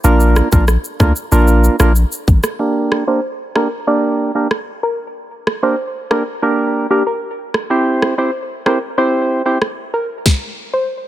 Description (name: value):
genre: dancehall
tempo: 94 BPM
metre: 4/4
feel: straight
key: G dorian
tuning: A4 = 440 Hz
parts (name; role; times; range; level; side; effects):
- percussive organ stab; accompaniment; 0.0-9.6 s; Bb3 to C5; -16 LUFS; right 2 dB; chorus, low-pass filter
- punchy sub bass; bass; 0.0-2.4 s; A1 to D2; -12 LUFS; left 1 dB; none
- island pop drum kit; drums; 0.0-10.4 s; kick drum, rim click, shaker, snare drum; -18 LUFS; equal; none
- soft round pluck; melody; 3.1-10.9 s; G4 to D5; -20 LUFS; left 1 dB; chorus, low-pass filter, tape echo
room: digital ambience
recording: none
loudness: -13 LUFS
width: side -13 dB against mid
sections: 0.0-2.6 A section; 2.6-11.1 B section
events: filter sweep 2.6-11.1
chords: 0.0 Bb; 2.6 Gm; 7.7 C; 10.3 N.C.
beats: | 0.04 0.68 1.32 1.96 | 2.60 3.23 3.87 4.51 | 5.15 5.79 6.43 7.07 | 7.70 8.34 8.98 9.62 | 10.26